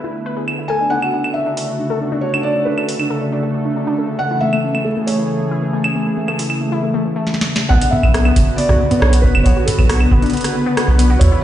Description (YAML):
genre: IDM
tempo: 137 BPM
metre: 4/4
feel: straight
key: unclear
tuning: A4 = 439 Hz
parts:
  - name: warm analog pad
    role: sustained chords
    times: 0.0-11.4 s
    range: C#3 to B4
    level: -21 LUFS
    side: equal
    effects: chorus
  - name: warbly dusty pluck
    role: arpeggios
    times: 0.0-11.4 s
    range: E3 to B4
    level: -21 LUFS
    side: left 2 dB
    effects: chorus, phaser, tape echo
  - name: booming analog drum machine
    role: drums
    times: 0.5-11.3 s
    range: claves, hi-hat, rim click, snare drum, toms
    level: -22 LUFS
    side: right 1 dB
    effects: low-pass filter on hats, low-pass filter on perc, low-pass filter on snare, low-pass filter on toms, dub echo
  - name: felt-muted upright piano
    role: melody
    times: 0.7-11.4 s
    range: A4 to G#5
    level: -21 LUFS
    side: equal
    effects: digital delay
  - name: round analog bass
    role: bass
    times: 7.7-11.3 s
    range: F#1 to E2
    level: -14 LUFS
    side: right 1 dB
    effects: none
  - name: electronic kick drum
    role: drums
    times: 7.7-11.3 s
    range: none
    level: -15 LUFS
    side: right 1 dB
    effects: none
room: moderate echo chamber reverb, RT60 2.2 s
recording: played on a big sound system in a bare room, stone room reverb, nothing above 10.7 kHz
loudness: -14 LUFS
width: side -12 dB against mid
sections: 0.0-7.7 A section; 7.7-11.4 B section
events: drum fill 7.3-7.7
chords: 0.0 E7sus4; 0.7 Dmaj7; 4.2 Amaj7; 7.7 Bmadd9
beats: 0.26 | 0.70 1.14 1.57 2.01 | 2.45 2.89 3.33 3.76 | 4.20 4.64 5.08 5.51 | 5.95 6.39 6.83 7.27 | 7.71 8.14 8.58 9.02 | 9.46 9.89 10.33 10.77 | 11.21